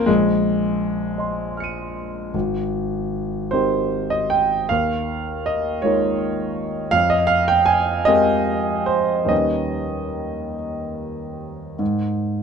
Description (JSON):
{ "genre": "classical, impressionist solo piano", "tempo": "47-55 BPM (dotted quarters)", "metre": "6/8", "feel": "rubato", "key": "Ab major", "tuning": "A4 = 440 Hz", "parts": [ { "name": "clear grand piano", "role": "solo", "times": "0.0-12.4 s", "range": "Ab1 to Eb7", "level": "-19 LUFS", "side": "right 1 dB", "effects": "none" } ], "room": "light reverb", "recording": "dark, warm production", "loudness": "-18 LUFS", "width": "side -6 dB against mid", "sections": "0.0-2.3 A section; 2.3-12.4 B section", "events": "none", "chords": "0.1 Bbm11; 2.3 Abmaj9; 4.7 Eb11; 6.9 Fm11; 9.3 Ebaug7; 11.8 N.C." }